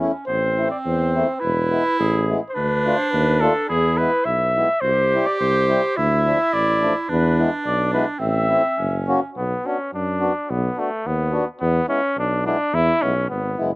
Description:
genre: alpine folk, alpine dance band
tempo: 106 BPM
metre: 2/4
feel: rubato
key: A harmonic minor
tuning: A4 = 441 Hz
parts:
  - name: bright clarinet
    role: second line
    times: 0.0-9.4 s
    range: C4 to G4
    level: -24 LUFS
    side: right 2 dB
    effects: none
  - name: mellow accordion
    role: accompaniment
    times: 0.0-13.7 s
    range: F3 to F#4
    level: -24 LUFS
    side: left 1 dB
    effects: none
  - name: warm tuba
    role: bass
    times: 0.0-13.8 s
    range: E1 to F#2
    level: -23 LUFS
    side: equal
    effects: none
  - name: warm flugelhorn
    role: melody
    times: 0.3-13.7 s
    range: A3 to E5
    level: -21 LUFS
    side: equal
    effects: none
room: little or no reverb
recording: recorded outdoors, with no room sound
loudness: -18 LUFS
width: side -23 dB against mid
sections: 0.3-9.4 A section; 9.4-13.8 B section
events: none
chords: 0.3 Am; 1.4 E; 2.5 Dm; 3.7 E; 4.8 C; 6.0 Dm; 7.1 E7; 8.2 Am; 8.8 F#7; 9.4 Bm; 11.6 E

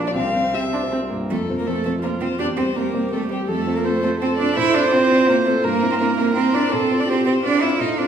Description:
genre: quick classical-period movement for piano quartet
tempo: 165 BPM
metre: 3/4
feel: rubato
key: F major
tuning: A4 = 440 Hz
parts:
  - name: warm cello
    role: second line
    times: 0.0-8.1 s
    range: G3 to E4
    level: -22 LUFS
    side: right 4 dB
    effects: none
  - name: dark grand piano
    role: accompaniment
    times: 0.0-8.1 s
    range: Bb1 to C6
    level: -23 LUFS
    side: left 1 dB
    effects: none
  - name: warm viola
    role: accompaniment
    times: 0.0-8.1 s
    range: Bb3 to C5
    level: -23 LUFS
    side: right 2 dB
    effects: none
  - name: warm violin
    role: melody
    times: 0.1-8.1 s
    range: G4 to F5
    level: -26 LUFS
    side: left 5 dB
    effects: none
room: wet recital hall reverb, RT60 1.3 s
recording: recorded in a church or concert hall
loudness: -17 LUFS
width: side -8 dB against mid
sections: 0.0-1.3 A section; 1.3-8.1 B section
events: none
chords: 0.2 C; 1.3 F; 2.4 C7/E; 3.5 F; 4.6 F/A; 5.6 C7/G; 6.7 F/A

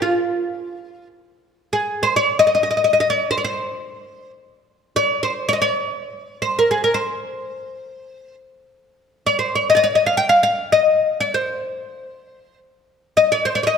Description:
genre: Arabic maqam ensemble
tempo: free time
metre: none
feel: none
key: C maqam bayati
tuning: A4 = 440 Hz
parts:
  - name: oud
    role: solo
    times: 0.0-13.8 s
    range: F4 to G5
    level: -16 LUFS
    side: left 1 dB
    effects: none
room: moderate concert hall reverb, RT60 1.8 s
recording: none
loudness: -16 LUFS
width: side -6 dB against mid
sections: 0.0-13.8 A section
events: none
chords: none

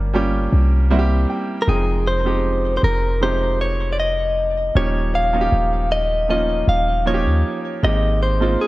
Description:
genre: contemporary R&B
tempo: 78 BPM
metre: 4/4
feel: straight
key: F minor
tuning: A4 = 440 Hz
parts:
  - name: clear concert grand piano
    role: accompaniment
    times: 0.0-8.7 s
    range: C3 to G5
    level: -23 LUFS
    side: right 3 dB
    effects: none
  - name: warm 808-style bass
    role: bass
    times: 0.0-8.6 s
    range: Eb1 to Eb2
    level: -19 LUFS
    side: equal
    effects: none
  - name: direct-recorded clean electric guitar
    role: melody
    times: 1.6-8.7 s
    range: Ab4 to F5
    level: -21 LUFS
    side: left 1 dB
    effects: spring reverb, digital delay
room: light reverb, small room ambience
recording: dark, warm production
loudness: -16 LUFS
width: side -18 dB against mid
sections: 0.0-8.7 A section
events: grand piano fill 0.5-1.7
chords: 0.0 Gm7b5; 0.9 C7; 1.7 Fm7; 4.8 Eb7; 7.8 Abmaj7

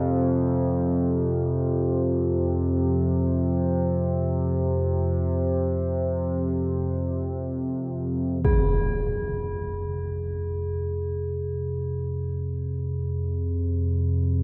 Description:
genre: dark ambient drone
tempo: free time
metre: none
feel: none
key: F minor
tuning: A4 = 441 Hz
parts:
  - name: analog drone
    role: drone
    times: 0.0-14.4 s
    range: F2 to C3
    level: -26 LUFS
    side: equal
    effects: chorus
  - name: quartz singing bowl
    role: texture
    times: 0.0-14.4 s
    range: F4 to Ab4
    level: -37 LUFS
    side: equal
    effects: none
  - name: impact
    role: percussion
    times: 8.4-8.7 s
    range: none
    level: -31 LUFS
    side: equal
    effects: low-pass filter on sfx
room: wet cathedral reverb, RT60 5.2 s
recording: none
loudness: -26 LUFS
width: mono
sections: 0.0-8.5 A section; 8.5-14.4 B section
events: filter sweep on synth drone 8.5-14.4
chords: 0.0 F5

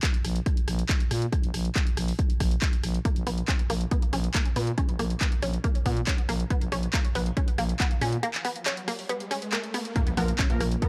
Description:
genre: driving peak-time techno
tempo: 139 BPM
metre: 4/4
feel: straight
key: Bb phrygian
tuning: A4 = 440 Hz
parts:
  - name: electronic kick drum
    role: drums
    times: 0.0-10.9 s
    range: none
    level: -28 LUFS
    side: equal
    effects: overdrive
  - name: punchy analog drum machine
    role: drums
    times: 0.0-10.9 s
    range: handclaps, hi-hat, rim click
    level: -34 LUFS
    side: equal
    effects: none
  - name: growling FM bass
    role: bass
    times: 0.2-10.8 s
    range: Bb1 to Bb2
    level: -30 LUFS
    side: equal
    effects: sidechain pumping
  - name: resonant blip pluck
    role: riff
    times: 3.1-10.9 s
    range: Bb3 to Db4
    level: -35 LUFS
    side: equal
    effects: phaser, overdrive, sidechain pumping, tape echo
  - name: riser and impact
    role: sound effects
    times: 8.0-10.9 s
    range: none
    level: -40 LUFS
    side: equal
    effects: none
  - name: analog drone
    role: drone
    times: 10.4-10.9 s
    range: Bb2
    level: -40 LUFS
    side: equal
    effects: none
  - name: rave stab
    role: stabs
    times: 10.2-10.9 s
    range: F3 to Bb4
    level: -33 LUFS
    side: equal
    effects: chorus, built-in reverb, sidechain pumping, tape echo
room: little or no reverb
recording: dry, gritty hardware recording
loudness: -27 LUFS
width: mono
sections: 0.0-10.0 A section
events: riser 8.0-10.0; break 8.2-10.0; impact 10.0-10.9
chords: 0.0 N.C.; 10.0 Bb5

